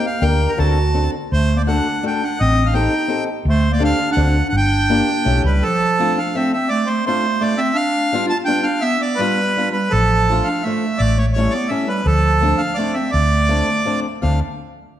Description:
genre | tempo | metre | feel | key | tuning
musette waltz | 167 BPM | 3/4 | rubato | D dorian from 5.6 s | A4 = 440 Hz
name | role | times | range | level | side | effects
accordion | melody | 0.0-14.4 s | A4 to A5 | -20 LUFS | right 2 dB | none
fingerpicked swing-style acoustic guitar | accompaniment | 0.0-14.4 s | F3 to Bb4 | -24 LUFS | left 4 dB | none
hollow-body short-scale fingered electric bass | bass | 0.2-5.6, 9.9-14.4 s | G1 to D2 | -18 LUFS | equal | none
mellow clarinet | second line | 0.6-14.4 s | F3 to F#4 | -22 LUFS | right 2 dB | none
room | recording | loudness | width
moderate recital hall reverb, RT60 1.6 s | none | -15 LUFS | side -11 dB against mid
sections
0.0-5.6 A section; 5.6-14.2 B section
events
none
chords
0.2 Gm/D; 0.6 D7; 1.3 D; 2.4 Am7b5; 3.5 D7sus4; 4.2 D7; 4.5 Gm7; 5.3 A7; 5.6 Dm7; 7.8 G7; 9.9 Dm/A; 11.0 A7; 12.1 Dm7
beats
| 0.23 0.59 0.96 | 1.33 1.69 2.04 | 2.40 2.75 3.11 | 3.46 3.81 4.17 | 4.53 4.89 5.26 | 5.63 5.99 6.35 | 6.71 7.06 7.42 | 7.77 8.13 8.48 | 8.84 9.21 9.57 | 9.94 10.30 10.66 | 11.01 11.37 11.72 | 12.07 12.42 12.78 | 13.14 13.50 13.86 | 14.23

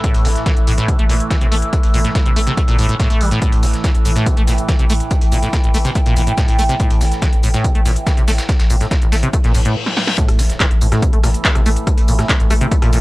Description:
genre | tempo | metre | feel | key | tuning
driving peak-time techno | 142 BPM | 4/4 | straight | unclear | A4 = 439 Hz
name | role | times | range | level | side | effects
acid bass, saw | riff | 0.0-13.0 s | A1 to A3 | -20 LUFS | equal | lush chorus, sidechain pumping, tape echo
overtone-sweeping drone | drone | 0.0-13.0 s | A2 to E3 | -26 LUFS | right 1 dB | chorus, built-in reverb, sidechain pumping
breakbeat sampler-style drum kit | drums | 0.0-13.0 s | hi-hat, snare drum, tambourine | -30 LUFS | equal | sidechain pumping on perc, high-pass filter on perc, high-pass filter on snare, sidechain pumping on hats, high-pass filter on hats
electronic kick drum | drums | 0.0-12.8 s | none | -16 LUFS | equal | none
techno drum kit | drums | 0.0-13.0 s | handclaps, hi-hat, rim click, shaker, snare drum | -23 LUFS | equal | none
warbly tape-like pad | texture | 0.0-13.0 s | A3 to E6 | -26 LUFS | right 1 dB | chorus, built-in reverb, sidechain pumping
saturated sub bass | bass | 0.1-13.0 s | A1 | -17 LUFS | equal | overdrive, sidechain pumping, low-pass filter
reverse cymbal and impact | sound effects | 9.5-11.9 s | none | -25 LUFS | left 3 dB | none
room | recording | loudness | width
little or no reverb | dry, gritty hardware recording, cassette tape | -13 LUFS | side -19 dB against mid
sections
0.0-10.2 A section; 10.2-13.0 B section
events
reverse cymbal 9.5-10.2; stop 9.8-10.2; drum fill 9.9-10.2; band accent 10.1; drop 10.2-13.0; impact 10.2-11.9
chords
0.0 A5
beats
| 0.04 0.46 0.88 1.31 | 1.73 2.15 2.57 3.00 | 3.42 3.84 4.26 4.69 | 5.11 5.53 5.95 6.38 | 6.80 7.22 7.64 8.07 | 8.49 8.91 9.33 9.76 | 10.18 10.60 11.02 11.45 | 11.87 12.29 12.71

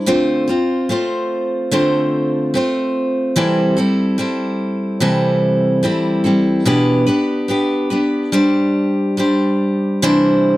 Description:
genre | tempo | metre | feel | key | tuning
pop | 73 BPM | 4/4 | straight | unclear | A4 = 440 Hz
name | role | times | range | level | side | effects
picked steel-string acoustic guitar | solo | 0.0-10.6 s | B2 to C5 | -14 LUFS | equal | none
room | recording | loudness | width
light reverb | dry, close 1970s-style studio recording | -14 LUFS | side -17 dB against mid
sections
0.0-10.0 A section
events
none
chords
0.1 Dm7; 3.4 Am7/C; 6.7 Em7/B; 8.3 Gsus4; 10.0 Cadd9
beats
| 0.07 0.90 1.72 2.54 | 3.36 4.18 5.01 5.83 | 6.66 7.49 8.33 9.18 | 10.03

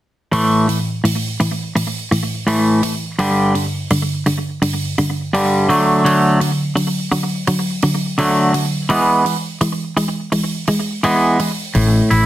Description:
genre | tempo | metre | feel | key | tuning
quiet-loud alternative rock | 84 BPM | 4/4 | straight | unclear | A4 = 439 Hz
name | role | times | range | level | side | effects
twangy electric guitar | arpeggios | 0.3-12.3 s | G2 to E4 | -15 LUFS | equal | slapback echo
hi-hat | drums | 0.3-12.3 s | none | -26 LUFS | right 4 dB | none
fretless electric bass | bass | 11.8-12.3 s | A1 | -14 LUFS | left 1 dB | none
room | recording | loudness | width
light reverb | dense, heavily limited modern master | -15 LUFS | side -14 dB against mid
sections
0.3-11.7 A section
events
none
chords
0.3 A5; 3.2 G5; 5.7 D; 8.9 E; 11.7 A5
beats
| 0.32 1.04 1.76 2.47 | 3.19 3.90 4.62 5.34 | 6.05 6.76 7.48 8.19 | 8.90 9.62 10.33 11.04 | 11.75

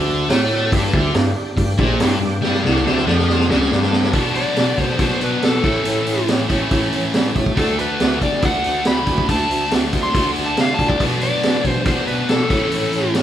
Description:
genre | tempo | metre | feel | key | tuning
blues rock power trio and southern rock | 140 BPM | 4/4 | straight | D major | A4 = 440 Hz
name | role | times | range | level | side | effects
overdriven tonewheel organ | sustained chords | 0.0-13.2 s | C#4 to A5 | -28 LUFS | right 2 dB | chorus vibrato, slow rotary speaker
sludgy distorted guitar | riff | 0.0-13.2 s | G2 to F#4 | -20 LUFS | left 1 dB | overdrive
warm bass clarinet | bass | 0.0-13.2 s | Bb1 to G3 | -24 LUFS | equal | none
vintage drum kit | drums | 0.3-13.2 s | hi-hat, kick drum, snare drum | -20 LUFS | right 1 dB | none
overdriven slide guitar | melody | 4.4-13.1 s | A4 to C6 | -22 LUFS | left 1 dB | none
room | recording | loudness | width
moderate large studio reverb, RT60 1.1 s | band playing live in one room | -15 LUFS | side -11 dB against mid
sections
0.0-4.1 A section; 4.1-13.2 B section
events
drum fill 2.4-4.1; tonewheel organ fill 2.9-4.1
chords
0.0 D; 0.7 G5; 4.1 Bm; 5.6 A; 7.6 D; 11.0 Bm; 12.5 A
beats
0.30 | 0.72 1.15 1.57 2.00 | 2.43 2.85 3.28 3.71 | 4.14 4.57 5.00 5.42 | 5.85 6.28 6.71 7.14 | 7.57 8.00 8.43 8.86 | 9.29 9.72 10.15 10.58 | 11.01 11.44 11.86 12.29 | 12.72 13.15

